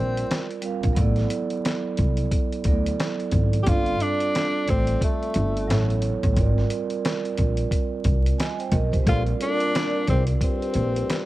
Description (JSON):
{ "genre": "hip hop, jazz-hop", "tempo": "89 BPM", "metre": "4/4", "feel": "swing 60% on 16ths", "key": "unclear", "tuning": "A4 = 440 Hz", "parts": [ { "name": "breathy tenor saxophone", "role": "melody", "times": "0.0-11.3 s", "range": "A3 to G4", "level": "-26 LUFS", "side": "left 1 dB", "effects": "none" }, { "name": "vibraphone with soft mallets", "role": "accompaniment", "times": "0.0-11.3 s", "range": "F#3 to Ab5", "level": "-28 LUFS", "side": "right 6 dB", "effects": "cassette tape" }, { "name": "upright bass", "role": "bass", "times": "0.0-11.0 s", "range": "G1 to D2", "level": "-23 LUFS", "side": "equal", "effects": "none" }, { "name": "dusty soul sampler-style drum kit", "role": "drums", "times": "0.2-11.3 s", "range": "hi-hat, kick drum, snare drum", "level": "-25 LUFS", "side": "equal", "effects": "none" }, { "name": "trombone with cup mute", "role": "second line", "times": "9.1-11.3 s", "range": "G2 to D3", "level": "-30 LUFS", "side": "left 6 dB", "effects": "cassette tape, analog delay" } ], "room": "studio reverb", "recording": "home recording on cassette, vinyl crackle", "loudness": "-21 LUFS", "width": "side -16 dB against mid", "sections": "0.0-11.3 A section", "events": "none", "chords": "0.0 Bb69; 1.0 D/A; 3.7 G9sus4; 5.7 Aadd9; 6.4 Abmaj9; 9.1 Bb69" }